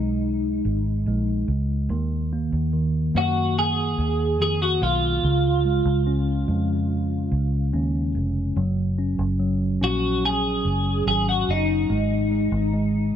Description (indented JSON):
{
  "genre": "pop ballad",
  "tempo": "72 BPM",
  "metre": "4/4",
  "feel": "straight",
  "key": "F# major",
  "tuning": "A4 = 440 Hz",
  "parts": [
    { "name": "twelve-string electric guitar", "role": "melody", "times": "0.0-13.2 s", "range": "D#4 to G#4", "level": "-24 LUFS", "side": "equal", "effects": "analog chorus" },
    { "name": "mellow tine electric piano", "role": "accompaniment", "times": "0.0-13.2 s", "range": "C#3 to C#4", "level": "-25 LUFS", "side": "equal", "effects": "slow stereo tremolo" },
    { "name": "vintage muted fingered electric bass", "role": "bass", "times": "0.0-13.1 s", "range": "E#1 to F#2", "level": "-24 LUFS", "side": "equal", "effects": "none" }
  ],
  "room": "light reverb",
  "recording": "none",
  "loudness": "-20 LUFS",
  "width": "side -9 dB against mid",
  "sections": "0.0-13.2 A section",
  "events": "none",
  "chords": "0.0 G#m; 1.9 D#m; 5.2 C#; 8.6 F#add9; 11.9 G#5"
}